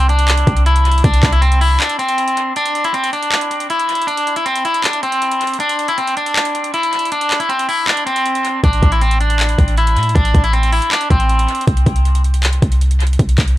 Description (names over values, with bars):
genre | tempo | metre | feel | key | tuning
hip hop, trap | 158 BPM | 4/4 | half-time | A minor | A4 = 442 Hz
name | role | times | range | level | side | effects
electric guitar at the edge of break-up | melody | 0.0-11.6 s | C4 to E4 | -16 LUFS | equal | harmonic tremolo, low-pass filter, analog delay
clean 808-style bass | bass | 0.0-1.8, 8.6-13.6 s | A1 to A2 | -13 LUFS | equal | none
trap drum kit | drums | 0.0-13.6 s | handclaps, hi-hat, kick drum | -19 LUFS | equal | analog delay
room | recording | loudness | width
little or no reverb | echo-heavy mix | -13 LUFS | side -15 dB against mid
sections
0.0-2.6 A section; 2.6-13.6 B section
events
break 1.8-2.6, 2.6-8.6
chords
0.0 C; 2.6 N.C.; 8.6 Am; 11.7 N.C.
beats
0.28 0.66 | 1.04 1.42 1.80 2.18 | 2.56 2.94 3.32 3.70 | 4.08 4.46 4.84 5.22 | 5.60 5.98 6.36 6.74 | 7.12 7.50 7.88 8.26 | 8.64 9.02 9.40 9.78 | 10.15 10.54 10.91 11.29 | 11.67 12.05 12.43 12.81 | 13.19 13.57